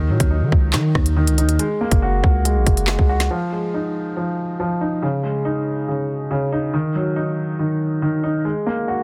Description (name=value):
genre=hip hop, drill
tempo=140 BPM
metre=4/4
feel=half-time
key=F phrygian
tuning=A4 = 440 Hz
part: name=dark grand piano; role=accompaniment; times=0.0-9.0 s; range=Db3 to Gb4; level=-23 LUFS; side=equal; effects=low-pass filter
part: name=long sustained 808-style bass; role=bass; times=0.0-3.3 s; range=Gb1 to Eb3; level=-21 LUFS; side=equal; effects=none
part: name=drill drum kit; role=drums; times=0.2-3.3 s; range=handclaps, hi-hat, kick drum, rim click, snare drum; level=-20 LUFS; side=equal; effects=none
room=little or no reverb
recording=dense, heavily limited modern master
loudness=-20 LUFS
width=mono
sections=0.0-3.3 A section; 3.3-9.0 B section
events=none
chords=0.0 Ebm; 1.6 Gbadd9; 3.3 Fm7; 5.0 Dbsus2; 6.7 Ebm; 8.5 Gbadd9